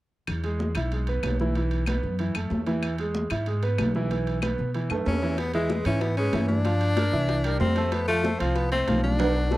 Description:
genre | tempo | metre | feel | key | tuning
latin, salsa | 188 BPM | 4/4 | straight | unclear | A4 = 440 Hz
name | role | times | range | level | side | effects
upright bass | bass | 0.3-9.6 s | B1 to B2 | -27 LUFS | equal | none
claves | percussion | 0.3-5.1 s | none | -33 LUFS | left 9 dB | none
congas | percussion | 0.3-9.6 s | none | -32 LUFS | left 1 dB | none
timbales | percussion | 0.3-9.3 s | none | -35 LUFS | right 5 dB | none
clear concert grand piano | accompaniment | 0.4-9.6 s | E3 to F#5 | -29 LUFS | right 2 dB | none
clear tenor saxophone | melody | 5.1-9.6 s | G#3 to D4 | -27 LUFS | left 2 dB | none
bongos | percussion | 5.4-9.6 s | none | -35 LUFS | left 8 dB | none
room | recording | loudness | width
light reverb | dry, close 1970s-style studio recording | -23 LUFS | side -17 dB against mid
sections
0.3-5.4 A section; 5.4-9.6 B section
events
drum fill 4.9-5.4, 9.2-9.6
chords
0.3 E; 1.5 B7sus4; 2.8 E; 4.1 B7sus4; 5.4 E6; 6.7 Gm7; 7.3 C7; 7.9 F

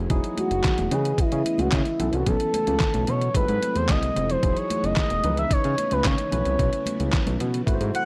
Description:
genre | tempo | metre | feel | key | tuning
early-eighties boogie funk | 111 BPM | 4/4 | straight | unclear | A4 = 440 Hz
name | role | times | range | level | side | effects
barky tine electric piano | accompaniment | 0.0-8.1 s | D#3 to D#5 | -34 LUFS | equal | overdrive
string machine, violins | sustained chords | 0.0-8.1 s | B#2 to D#5 | -38 LUFS | equal | none
fat analog bass | bass | 0.0-7.9 s | E1 to C#3 | -28 LUFS | equal | none
detuned 8-bit digital drum machine | drums | 0.1-8.1 s | handclaps, hi-hat, kick drum, snare drum | -27 LUFS | equal | none
congas | percussion | 0.1-8.1 s | none | -36 LUFS | equal | none
expressive synth lead | melody | 0.4-8.1 s | E4 to F#5 | -28 LUFS | equal | chorus
room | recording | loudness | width
digital ambience | none | -23 LUFS | mono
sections
0.1-8.1 A section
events
analog synth lead solo 0.1-8.1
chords
0.1 Emaj9; 0.9 C#m9; 2.0 B9sus4; 3.3 G#7b9b13; 4.4 Emaj9; 5.2 C#m9; 6.3 B9sus4

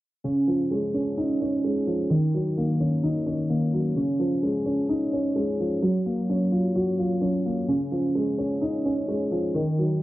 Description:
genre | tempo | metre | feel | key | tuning
hip hop | 129 BPM | 4/4 | half-time | Db major | A4 = 442 Hz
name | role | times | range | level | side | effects
dark baby grand piano | accompaniment | 0.2-10.0 s | Db3 to Gb4 | -25 LUFS | left 1 dB | cassette tape
warbly lo-fi synth keys | arpeggios | 0.2-10.0 s | Eb3 to Db4 | -26 LUFS | right 1 dB | chorus, cassette tape, analog delay
room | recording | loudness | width
light reverb | home recording on cassette, low-pass filter, nothing above 7.8 kHz | -22 LUFS | side -16 dB against mid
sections
0.2-10.0 A section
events
filter sweep 0.2-10.0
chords
0.2 Dbadd9; 2.1 Ebm7; 4.0 Dbadd9; 5.8 Gbmaj7; 7.7 Dbadd9

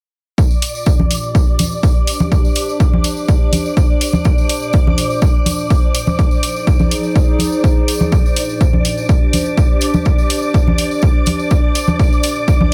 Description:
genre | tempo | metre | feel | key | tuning
piano house | 124 BPM | 4/4 | straight | Bb major | A4 = 442 Hz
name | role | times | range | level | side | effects
string machine, violins | sustained chords | 0.4-12.7 s | D5 to D6 | -26 LUFS | equal | ensemble chorus, sidechain pumping
electronic kick drum | drums | 0.4-12.6 s | none | -15 LUFS | equal | none
tambourine and congas | percussion | 0.4-12.7 s | none | -22 LUFS | equal | none
warbly tape-like pad | texture | 0.7-12.7 s | Bb2 to C5 | -25 LUFS | equal | chorus, built-in reverb, sidechain pumping
electronic hi-hat | drums | 0.6-12.3 s | none | -23 LUFS | equal | none
room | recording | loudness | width
little or no reverb | none | -15 LUFS | mono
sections
0.4-12.7 A section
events
filter sweep on string machine 0.4-12.7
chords
0.4 Bb6

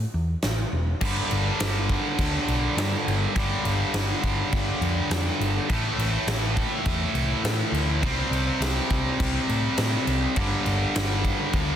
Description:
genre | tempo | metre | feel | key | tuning
hard rock | 103 BPM | 4/4 | straight | unclear | A4 = 440 Hz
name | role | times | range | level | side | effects
hollow-body short-scale picked electric bass | bass | 0.0-11.7 s | E1 to A2 | -27 LUFS | equal | none
huge arena drum kit | drums | 0.4-11.7 s | crash cymbal, hi-hat, kick drum, snare drum | -28 LUFS | equal | none
tight distorted guitar | riff | 1.0-11.8 s | G2 to C4 | -26 LUFS | right 1 dB | distortion
room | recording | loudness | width
small room ambience | dense, heavily limited modern master | -22 LUFS | side -10 dB against mid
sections
0.0-1.0 A section; 1.0-11.8 B section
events
none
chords
0.0 A5; 1.0 G5; 5.7 A5; 8.0 C5; 10.4 G5

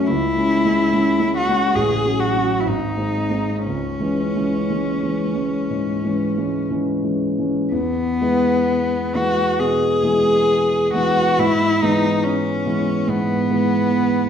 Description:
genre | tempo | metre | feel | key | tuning
classical, romantic duo for cello and grand piano | 58-72 BPM | 4/4 | rubato | E major from 7.7 s | A4 = 441 Hz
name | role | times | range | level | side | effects
rich cello | melody | 0.0-14.3 s | B3 to G#4 | -20 LUFS | left 1 dB | none
warm concert grand piano | accompaniment | 0.0-14.3 s | G#1 to C#4 | -20 LUFS | equal | none
room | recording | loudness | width
wet recital hall reverb, RT60 1.2 s | recorded in a church or concert hall | -17 LUFS | side -8 dB against mid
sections
0.0-7.7 A section; 7.7-14.3 B section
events
none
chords
0.1 C#m; 1.8 F#m/A; 2.7 G#; 3.7 C#m; 7.7 E; 11.4 E/G#

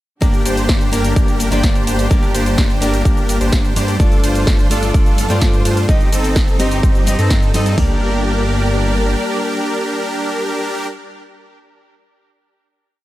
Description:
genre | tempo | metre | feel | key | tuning
EDM, festival progressive house | 127 BPM | 4/4 | straight | G minor | A4 = 437 Hz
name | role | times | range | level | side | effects
fingerpicked steel-string acoustic guitar | accompaniment | 0.2-10.9 s | A3 to Eb5 | -22 LUFS | left 2 dB | sidechain pumping, tape echo
warm symphonic string section | sustained chords | 0.2-10.9 s | G3 to D5 | -27 LUFS | right 1 dB | sidechain pumping
supersaw chords | riff | 0.2-10.9 s | C4 to C5 | -21 LUFS | equal | sidechain pumping, tape echo
wide detuned saw bass | bass | 0.2-9.2 s | G1 to G2 | -19 LUFS | equal | chorus, sidechain pumping
big-room dance drum kit | drums | 0.2-7.9 s | hi-hat, kick drum, toms | -15 LUFS | equal | none
big-room dance drum kit | drums | 0.2-7.8 s | cabasa, hi-hat, ride cymbal, snare drum | -24 LUFS | equal | none
room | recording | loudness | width
little or no reverb | none | -13 LUFS | side -16 dB against mid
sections
0.2-7.8 drop; 7.8-11.6 final chord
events
drop 0.2-7.8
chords
0.2 Gm; 4.0 Dm/G; 5.9 Cm/G; 7.8 Gm

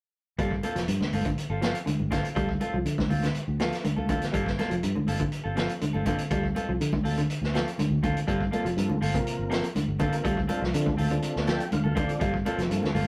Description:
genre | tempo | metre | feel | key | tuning
afrobeat | 122 BPM | 4/4 | straight | G minor | A4 = 440 Hz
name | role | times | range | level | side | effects
electric guitar at the edge of break-up | arpeggios | 0.4-13.0 s | C3 to G3 | -33 LUFS | equal | none
clean electric guitar | stabs | 0.4-13.1 s | Bb3 to A4 | -35 LUFS | equal | none
fingered electric bass | bass | 0.4-13.1 s | F1 to D3 | -33 LUFS | equal | none
vintage drum kit | drums | 0.4-13.1 s | hi-hat, kick drum, snare drum | -34 LUFS | equal | none
congas | percussion | 0.4-13.1 s | none | -35 LUFS | equal | none
mellow tonewheel organ | accompaniment | 8.5-12.9 s | Bb3 to G5 | -36 LUFS | equal | slow rotary speaker
room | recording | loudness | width
moderate studio reverb, RT60 0.6 s | rough rehearsal-room recording | -27 LUFS | mono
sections
0.4-13.1 A section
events
tonewheel organ fill 11.2-12.2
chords
0.4 Gm11; 2.4 Dm7; 4.3 Gm11; 6.3 Dm7; 8.3 Gm11; 10.3 Dm7; 12.2 Gm11

